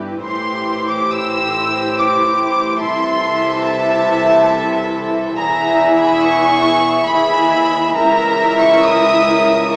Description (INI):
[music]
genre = classical, slow romantic movement for string orchestra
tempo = 70 BPM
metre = 3/4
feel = rubato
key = unclear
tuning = A4 = 440 Hz
[part]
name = warm symphonic violin section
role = second line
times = 0.0-9.8 s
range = G4 to E5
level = -18 LUFS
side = equal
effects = none
[part]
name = dark symphonic viola section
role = accompaniment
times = 0.0-9.8 s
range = E3 to E4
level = -23 LUFS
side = equal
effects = none
[part]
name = dark symphonic double bass section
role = bass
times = 0.0-9.8 s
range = E1 to D#2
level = -35 LUFS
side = equal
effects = none
[part]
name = warm symphonic cello section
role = bass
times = 0.0-9.8 s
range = C#2 to C3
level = -28 LUFS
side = equal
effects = none
[part]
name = warm chamber violin section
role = melody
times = 0.2-9.8 s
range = A5 to E6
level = -20 LUFS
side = equal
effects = none
[sound]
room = wet recital hall reverb, RT60 1.4 s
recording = recorded in a church or concert hall, vinyl crackle, small speaker sound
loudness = -15 LUFS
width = mono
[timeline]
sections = 0.0-9.8 A section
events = none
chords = 0.2 Am7; 2.8 Am/C; 5.4 E; 8.0 A#dim/C#